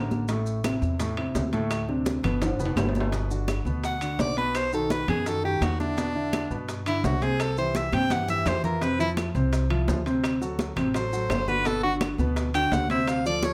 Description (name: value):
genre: Afro-Cuban jazz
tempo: 169 BPM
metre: 4/4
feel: straight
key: G major from 3.1 s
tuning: A4 = 440 Hz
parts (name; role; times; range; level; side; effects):
- warm concert grand piano; accompaniment; 0.0-13.5 s; A2 to C5; -31 LUFS; equal; none
- upright bass; bass; 0.0-13.5 s; F1 to G2; -32 LUFS; equal; none
- bongos; percussion; 0.1-13.5 s; none; -40 LUFS; equal; none
- congas; percussion; 0.1-13.5 s; none; -35 LUFS; equal; none
- maracas; percussion; 0.1-13.5 s; none; -48 LUFS; equal; none
- timbales; percussion; 0.3-13.5 s; none; -38 LUFS; equal; none
- claves; percussion; 0.6-13.3 s; none; -43 LUFS; equal; none
- clear soprano saxophone; melody; 3.9-13.5 s; D4 to G5; -29 LUFS; equal; none
room: light reverb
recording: none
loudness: -26 LUFS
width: mono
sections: 0.0-3.1 A section; 3.1-13.5 B section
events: drum fill 2.4-3.1, 7.9-8.8; soprano saxophone solo 3.1-13.5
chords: 0.3 Am; 1.7 D5; 2.4 G7; 3.1 Gmaj7; 4.5 B; 6.0 Em7; 7.4 C; 8.8 F5; 10.2 D7; 11.7 Gmaj7